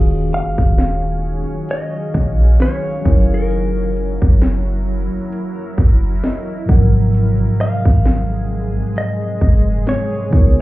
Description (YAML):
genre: contemporary R&B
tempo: 66 BPM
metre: 4/4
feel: swing 58% on 16ths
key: unclear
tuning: A4 = 440 Hz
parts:
  - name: mellow tine electric piano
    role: accompaniment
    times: 0.0-10.6 s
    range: Ab2 to Gb5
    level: -20 LUFS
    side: equal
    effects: medium stereo tremolo
  - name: granular cloud pad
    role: sustained chords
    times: 0.0-10.6 s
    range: C3 to F5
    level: -27 LUFS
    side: right 2 dB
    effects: built-in reverb
  - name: clean 808-style bass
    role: bass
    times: 0.0-10.6 s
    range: Eb1 to Db2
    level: -16 LUFS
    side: equal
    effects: none
  - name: direct-recorded clean electric guitar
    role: melody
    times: 0.3-10.6 s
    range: Bb4 to F5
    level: -24 LUFS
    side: left 1 dB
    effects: tape echo
  - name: trap drum kit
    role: drums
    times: 0.3-10.6 s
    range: hi-hat, kick drum, snare drum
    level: -15 LUFS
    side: equal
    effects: none
room: digital ambience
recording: heard muffled through a wall, club reverb, EQ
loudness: -14 LUFS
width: side -17 dB against mid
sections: 0.0-10.6 A section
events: tine electric piano fill 5.8-7.1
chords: 0.0 Ebm11; 3.1 Gb7; 6.7 Ab13